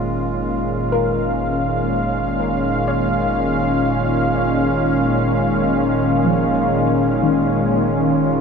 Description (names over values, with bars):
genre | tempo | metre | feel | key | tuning
ambient | free time | none | none | F# major | A4 = 440 Hz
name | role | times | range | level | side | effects
warm analog pad | sustained chords | 0.0-8.4 s | A#2 to E#5 | -17 LUFS | equal | chorus
soft round pluck | arpeggios | 0.0-8.4 s | D#3 to C#5 | -26 LUFS | left 1 dB | lush chorus, ping-pong delay
warm sub bass | bass | 0.0-8.4 s | F#1 | -33 LUFS | equal | none
pedal harmonium | drone | 0.0-8.4 s | G#3 to E#4 | -26 LUFS | right 1 dB | none
room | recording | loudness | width
wet huge ambient reverb, RT60 8.1 s | dark, warm production | -16 LUFS | side -6 dB against mid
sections
0.0-8.4 A section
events
fade-out on sub bass 0.0-8.4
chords
0.0 F#maj9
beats
free time